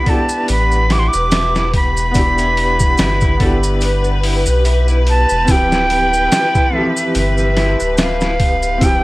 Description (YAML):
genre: trip hop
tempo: 72 BPM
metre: 4/4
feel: swing 56% on 16ths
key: E phrygian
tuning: A4 = 440 Hz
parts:
  - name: bright reedy jazz flute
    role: melody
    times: 0.0-9.0 s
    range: E5 to D6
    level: -17 LUFS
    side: right 1 dB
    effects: tape echo
  - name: clear upright piano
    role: accompaniment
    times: 0.0-9.0 s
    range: E3 to G4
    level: -22 LUFS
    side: equal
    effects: tremolo
  - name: rich studio string section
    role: sustained chords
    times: 0.0-9.0 s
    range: B4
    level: -24 LUFS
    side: left 2 dB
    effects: vintage 12-bit sampler grit
  - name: wind-like tuned noise texture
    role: texture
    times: 0.0-9.0 s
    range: G4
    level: -31 LUFS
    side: right 6 dB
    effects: none
  - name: electric guitar at the edge of break-up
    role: arpeggios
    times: 0.1-8.3 s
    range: E4 to E5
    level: -26 LUFS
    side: equal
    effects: tape echo
  - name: boom bap sampler-style drum kit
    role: drums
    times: 0.1-9.0 s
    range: hi-hat, kick drum, snare drum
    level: -17 LUFS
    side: equal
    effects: studio reverb
  - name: maracas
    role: percussion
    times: 0.3-9.0 s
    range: none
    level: -28 LUFS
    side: right 1 dB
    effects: none
  - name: warm sub bass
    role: bass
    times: 0.5-9.0 s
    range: D1 to B1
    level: -17 LUFS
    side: equal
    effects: none
room: studio reverb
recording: dry, gritty hardware recording, vinyl crackle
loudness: -12 LUFS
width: side -20 dB against mid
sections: 0.0-9.0 A section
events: none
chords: 0.0 Em7; 5.5 Dm11